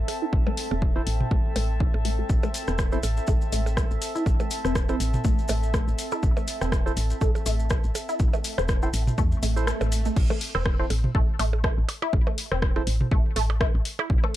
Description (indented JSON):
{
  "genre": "minimal techno",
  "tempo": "122 BPM",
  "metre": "4/4",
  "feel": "swing 56% on 16ths",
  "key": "A minor",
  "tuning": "A4 = 439 Hz",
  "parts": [
    { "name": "woody FM bass", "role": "bass", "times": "0.0-14.2 s", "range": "E1 to E2", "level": "-26 LUFS", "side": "equal", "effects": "tube saturation, sidechain pumping" },
    { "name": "warbly tape-like pad", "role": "texture", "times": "0.0-10.2 s", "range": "C4 to A5", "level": "-35 LUFS", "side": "equal", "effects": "chorus, built-in reverb, sidechain pumping" },
    { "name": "punchy analog drum machine", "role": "drums", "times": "0.1-14.0 s", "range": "crash cymbal, hi-hat, rim click", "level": "-31 LUFS", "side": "left 1 dB", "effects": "none" },
    { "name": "electronic percussion blips and toms", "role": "percussion", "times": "0.1-14.3 s", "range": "none", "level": "-31 LUFS", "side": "right 3 dB", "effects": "ping-pong delay" },
    { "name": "resonant blip pluck", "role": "riff", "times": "0.2-14.3 s", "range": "A3 to A4", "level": "-32 LUFS", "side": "left 1 dB", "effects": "phaser, analog chorus, sidechain pumping, ping-pong delay" },
    { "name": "electronic kick drum", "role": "drums", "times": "0.3-14.2 s", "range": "none", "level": "-24 LUFS", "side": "equal", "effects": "none" },
    { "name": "percussive organ stab", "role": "stabs", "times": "1.0-12.8 s", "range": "E4 to C5", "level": "-34 LUFS", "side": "right 4 dB", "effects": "chorus, ping-pong delay" },
    { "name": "maracas", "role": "percussion", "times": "2.3-10.1 s", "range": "none", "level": "-39 LUFS", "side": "left 2 dB", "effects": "none" },
    { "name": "swell", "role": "sound effects", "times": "9.4-10.2 s", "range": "none", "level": "-36 LUFS", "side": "right 2 dB", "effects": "none" }
  ],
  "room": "little or no reverb",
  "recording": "dark, warm production",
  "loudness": "-22 LUFS",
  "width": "side -14 dB against mid",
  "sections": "0.0-10.2 A section; 10.2-14.4 B section",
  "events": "filter sweep on synth arpeggio sound 0.0-10.2; swell 9.4-10.2; kick drops out 9.7-10.2; drop 10.2-14.4",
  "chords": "0.0 Am; 10.2 A5",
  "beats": "| 0.33 0.82 1.31 1.80 | 2.30 2.79 3.28 3.77 | 4.26 4.75 5.25 5.74 | 6.23 6.72 7.21 7.71 | 8.20 8.69 9.18 9.67 | 10.16 10.66 11.15 11.64 | 12.13 12.62 13.12 13.61 | 14.10"
}